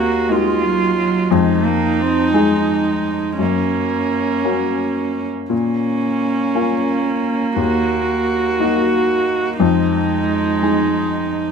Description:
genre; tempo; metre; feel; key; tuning
neoclassical piano and strings; 58 BPM (dotted quarters); 6/8; rubato; unclear; A4 = 441 Hz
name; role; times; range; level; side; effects
warm cello; second line; 0.0-11.5 s; Gb3 to C4; -21 LUFS; right 4 dB; none
warm baby grand piano; accompaniment; 0.0-11.5 s; Eb2 to Ab4; -19 LUFS; left 5 dB; none
warm viola; accompaniment; 0.0-11.5 s; Db4 to Gb4; -20 LUFS; right 3 dB; none
room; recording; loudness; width
light reverb; minimal, uncompressed stereo recording; -15 LUFS; side -6 dB against mid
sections
0.0-11.5 A section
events
none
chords
0.0 Ebm; 1.3 Fm7; 3.4 Gb; 5.5 Bbm; 7.6 Ebm; 9.6 Fm7

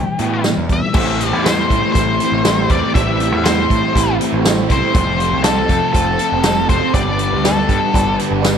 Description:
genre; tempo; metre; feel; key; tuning
classic rock; 120 BPM; 4/4; straight; A minor; A4 = 440 Hz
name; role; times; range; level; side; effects
octave-fuzz lead guitar; melody; 0.0-8.2 s; G4 to E5; -19 LUFS; left 3 dB; distortion, slapback echo
cranked stack guitar; riff; 0.0-8.6 s; G2 to F4; -23 LUFS; left 10 dB; overdrive, spring reverb
overdriven semi-hollow guitar; riff; 0.0-8.6 s; E2 to F4; -24 LUFS; right 12 dB; phaser, slapback echo
growling picked electric bass; bass; 0.0-8.6 s; F1 to A2; -21 LUFS; equal; overdrive
vintage drum kit; drums; 0.2-8.6 s; crash cymbal, hi-hat, kick drum, snare drum, tambourine; -18 LUFS; equal; none
tonewheel organ; sustained chords; 0.7-8.6 s; A3 to D5; -29 LUFS; equal; none
honky-tonk upright piano; accompaniment; 0.9-8.6 s; C4 to D5; -27 LUFS; right 7 dB; none
fuzz guitar; riff; 0.9-8.6 s; F2 to A3; -23 LUFS; right 2 dB; distortion, slapback echo
room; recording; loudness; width
light reverb; none; -13 LUFS; side -7 dB against mid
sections
1.0-8.6 A section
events
none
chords
0.0 Em; 1.0 Am7; 4.9 F; 6.9 G

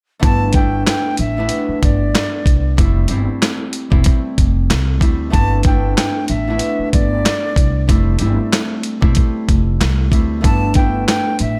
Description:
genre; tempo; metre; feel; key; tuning
hip hop, boom-bap hip-hop; 94 BPM; 4/4; swing 55% on 16ths; G mixolydian; A4 = 441 Hz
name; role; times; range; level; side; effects
reedy silver concert flute; melody; 0.2-11.6 s; D5 to A5; -25 LUFS; equal; delay
concert harp; accompaniment; 0.2-11.6 s; G3 to E4; -23 LUFS; equal; none
upright bass; bass; 0.2-11.6 s; E1 to D2; -20 LUFS; equal; none
dusty soul sampler-style drum kit; drums; 0.2-11.6 s; handclaps, hi-hat, kick drum, snare drum; -18 LUFS; equal; none
room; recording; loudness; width
small room ambience; none; -16 LUFS; mono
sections
0.2-11.6 A section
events
none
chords
0.2 G6; 2.8 Fmaj9; 5.3 G6; 7.9 Fmaj9; 10.4 G6

